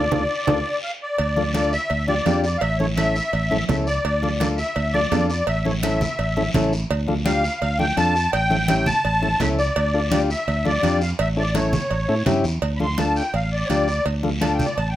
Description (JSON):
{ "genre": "latin, cumbia", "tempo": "168 BPM", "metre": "4/4", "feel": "straight", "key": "D harmonic minor", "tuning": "A4 = 437 Hz", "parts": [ { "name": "musette accordion", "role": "melody", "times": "0.0-15.0 s", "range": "C#5 to C6", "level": "-23 LUFS", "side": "left 1 dB", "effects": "none" }, { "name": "combo organ", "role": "accompaniment", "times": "0.0-14.7 s", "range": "C#4 to A4", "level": "-24 LUFS", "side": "left 2 dB", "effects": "none" }, { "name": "fingered electric bass", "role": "bass", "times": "0.0-15.0 s", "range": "A1 to A2", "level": "-24 LUFS", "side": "equal", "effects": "none" }, { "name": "congas", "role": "percussion", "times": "0.1-15.0 s", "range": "none", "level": "-27 LUFS", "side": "right 1 dB", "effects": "none" }, { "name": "guiro", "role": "percussion", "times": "0.1-15.0 s", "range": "none", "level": "-34 LUFS", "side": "left 1 dB", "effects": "none" }, { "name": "timbales and cowbell", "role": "percussion", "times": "0.1-15.0 s", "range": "none", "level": "-29 LUFS", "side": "right 6 dB", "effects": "none" } ], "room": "moderate studio reverb, RT60 0.6 s", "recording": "none", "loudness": "-19 LUFS", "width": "side -13 dB against mid", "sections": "0.0-1.2 A section; 1.2-12.6 B section; 12.6-15.0 C section", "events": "band accent 0.0-1.2; drum fill 0.5-1.2; accordion solo 12.6-15.0", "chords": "0.0 Dm; 2.6 A; 4.0 Dm; 5.5 A; 6.9 Dm; 8.3 A7; 9.8 Dm; 11.2 A7; 12.6 Dm", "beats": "0.12 0.48 0.83 | 1.19 1.55 1.91 2.26 | 2.62 2.98 3.33 3.69 | 4.05 4.40 4.76 5.12 | 5.47 5.83 6.19 6.54 | 6.90 7.26 7.62 7.97 | 8.33 8.69 9.05 9.40 | 9.76 10.12 10.48 10.84 | 11.19 11.55 11.91 12.27 | 12.62 12.98 13.34 13.70 | 14.06 14.42 14.78" }